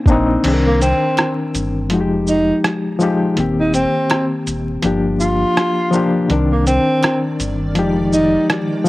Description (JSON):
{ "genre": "lo-fi hip hop", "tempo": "82 BPM", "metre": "4/4", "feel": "swing 61% on 16ths", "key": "C minor", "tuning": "A4 = 442 Hz", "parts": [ { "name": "barky reed electric piano", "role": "accompaniment", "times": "0.0-8.9 s", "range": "Eb3 to Bb4", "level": "-17 LUFS", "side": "left 2 dB", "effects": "overdrive, fast tremolo, cassette tape" }, { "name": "sub bass with octave", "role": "bass", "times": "0.1-8.4 s", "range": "Eb1 to C2", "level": "-21 LUFS", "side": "equal", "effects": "none" }, { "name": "lo-fi sampler-style drum kit", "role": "drums", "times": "0.1-8.9 s", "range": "crash cymbal, hi-hat, kick drum, rim click, shaker", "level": "-19 LUFS", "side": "right 1 dB", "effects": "none" }, { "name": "breathy tenor saxophone", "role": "melody", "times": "0.7-8.5 s", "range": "Bb3 to F4", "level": "-18 LUFS", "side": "right 1 dB", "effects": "none" }, { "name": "finger snap", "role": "percussion", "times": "1.2-8.7 s", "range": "none", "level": "-36 LUFS", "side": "right 7 dB", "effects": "none" }, { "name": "granular cloud pad", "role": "sustained chords", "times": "7.2-8.9 s", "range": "Eb3 to G5", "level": "-25 LUFS", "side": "right 1 dB", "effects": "built-in reverb, cassette tape" } ], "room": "light reverb", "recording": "home recording on cassette, vinyl crackle", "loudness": "-14 LUFS", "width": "side -18 dB against mid", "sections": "0.4-8.9 A section", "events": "break 0.4-8.9", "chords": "0.4 Cm9; 1.9 Fm9; 3.4 Eb6; 4.8 Gm7; 6.3 Cm9; 7.8 Fm9" }